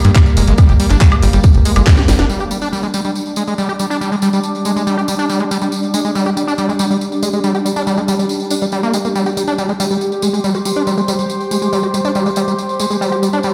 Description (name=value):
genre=psychedelic trance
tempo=140 BPM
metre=4/4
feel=straight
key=G phrygian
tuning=A4 = 441 Hz
part: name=bubbling stepped-filter texture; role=sustained chords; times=0.0-13.5 s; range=G3 to G4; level=-24 LUFS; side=equal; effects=chorus, built-in reverb, sidechain pumping
part: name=overdriven acid bass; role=riff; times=0.0-13.5 s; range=G3 to G4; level=-20 LUFS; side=equal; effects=distortion, sidechain pumping, digital delay
part: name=tight sequencer bass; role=bass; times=0.0-2.3 s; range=F1 to G2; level=-14 LUFS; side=equal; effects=none
part: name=garage drum kit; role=drums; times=0.0-2.3 s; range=handclaps, hi-hat, snare drum, woodblock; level=-23 LUFS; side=equal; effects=low-pass filter on hats, low-pass filter on snare, low-pass filter on perc
part: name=tambourine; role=percussion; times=0.0-13.5 s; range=none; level=-28 LUFS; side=equal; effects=none
part: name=warbly tape-like pad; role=texture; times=0.0-13.5 s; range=G3 to D6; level=-25 LUFS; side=equal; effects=chorus, built-in reverb, sidechain pumping
part: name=electronic kick drum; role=drums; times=0.2-2.0 s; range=none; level=-11 LUFS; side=equal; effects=none
room=moderate plate reverb, RT60 1.4 s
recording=played on a big sound system in a bare room, large studio reverb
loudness=-15 LUFS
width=mono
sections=0.0-2.3 A section; 2.3-13.5 B section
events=drop 0.0-2.3; drum fill 1.9-2.3; band accent 2.2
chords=0.0 G5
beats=0.15 | 0.58 1.01 1.44 1.87 | 2.30 2.73 3.15 3.58 | 4.01 4.44 4.87 5.30 | 5.72 6.15 6.58 7.01 | 7.44 7.87 8.30 8.72 | 9.15 9.58 10.01 10.44 | 10.87 11.30 11.72 12.15 | 12.58 13.01 13.44